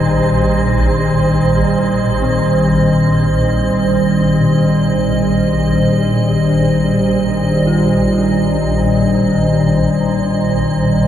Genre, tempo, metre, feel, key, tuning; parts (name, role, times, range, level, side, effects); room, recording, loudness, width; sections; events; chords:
dark ambient drone; free time; A4 = 436 Hz
sweeping resonant pad; sustained chords; 0.0-11.1 s; Eb3 to C5; -14 LUFS; equal; chorus
swarming drone; drone; 0.0-11.1 s; Bb1 to Bb2; -17 LUFS; equal; built-in reverb
icy glass pad; texture; 0.0-11.1 s; Eb5; -24 LUFS; right 1 dB; chorus, built-in reverb
dark detuned synth bell; arpeggios; 2.2-11.1 s; C4 to F4; -30 LUFS; left 2 dB
wet huge ambient reverb, RT60 7.4 s; -12 LUFS; side -10 dB against mid
0.0-11.1 A section
0.0 Eb